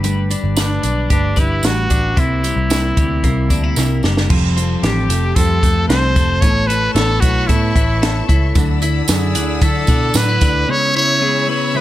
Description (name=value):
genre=jangly indie pop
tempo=113 BPM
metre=4/4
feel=straight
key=unclear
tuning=A4 = 439 Hz
part: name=mellow electric guitar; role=accompaniment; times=0.0-11.8 s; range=C3 to C#5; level=-24 LUFS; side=right 4 dB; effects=plate reverb
part: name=twelve-string electric guitar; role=arpeggios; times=0.0-11.8 s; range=C3 to C#5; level=-22 LUFS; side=left 5 dB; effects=none
part: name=vintage muted picked electric bass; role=bass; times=0.0-10.6 s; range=F1 to D3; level=-18 LUFS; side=equal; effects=none
part: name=compact cocktail drum kit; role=drums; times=0.0-10.5 s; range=crash cymbal, hi-hat, kick drum, snare drum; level=-17 LUFS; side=equal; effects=none
part: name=tambourine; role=percussion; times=0.0-4.2, 8.6-10.5 s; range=none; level=-27 LUFS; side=right 7 dB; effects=none
part: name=bright trumpet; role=melody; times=0.6-11.8 s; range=D4 to C#5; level=-19 LUFS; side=equal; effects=plate reverb
part: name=warm studio string section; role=sustained chords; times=4.3-11.8 s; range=G4 to E6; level=-28 LUFS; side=left 2 dB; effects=plate reverb
room=light reverb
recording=none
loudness=-13 LUFS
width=side -14 dB against mid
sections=0.0-4.3 A section; 4.3-11.8 B section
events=drum fill 3.8-4.3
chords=0.0 Gadd9; 2.2 C7; 4.3 Fadd9; 6.4 Aadd9; 8.6 Dadd9; 10.7 C#m7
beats=| 0.04 0.58 1.11 1.64 | 2.18 2.71 3.24 3.77 | 4.31 4.84 5.37 5.90 | 6.43 6.96 7.49 8.02 | 8.55 9.09 9.62 10.15 | 10.68 11.21 11.75